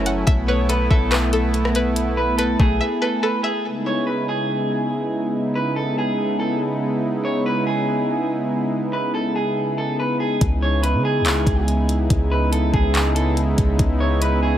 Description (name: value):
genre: hip hop, atmospheric cloud-rap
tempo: 142 BPM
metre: 4/4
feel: half-time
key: C# minor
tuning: A4 = 440 Hz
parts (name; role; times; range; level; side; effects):
- warm analog pad; sustained chords; 0.0-14.6 s; C#3 to G#5; -22 LUFS; right 1 dB; chorus, sidechain pumping
- string-like resonator pluck; arpeggios; 0.0-3.7 s; A3 to F#5; -26 LUFS; left 2 dB; chorus, phaser, digital delay
- clean 808-style bass; bass; 0.0-2.8, 10.4-14.6 s; F#1 to C#3; -21 LUFS; equal; none
- smooth R&B drum kit; drums; 0.1-2.7, 10.4-14.3 s; handclaps, hi-hat, kick drum, rim click; -21 LUFS; equal; none
- electric guitar at the edge of break-up; melody; 0.5-14.6 s; G#4 to C#5; -25 LUFS; equal; digital delay
room: moderate huge ambient reverb, RT60 4.0 s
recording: none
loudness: -18 LUFS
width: side -11 dB against mid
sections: 0.0-3.7 A section; 3.7-10.4 B section; 10.4-14.6 C section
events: break 2.8-3.7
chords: 0.3 B7sus4; 3.7 C#m7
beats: | 0.27 0.69 1.12 1.54 | 1.96 2.38 2.81 3.23 | 3.65 4.08 4.50 4.92 | 5.34 5.76 6.19 6.61 | 7.03 7.46 7.88 8.30 | 8.72 9.14 9.57 9.99 | 10.41 10.84 11.26 11.68 | 12.10 12.53 12.95 13.37 | 13.79 14.21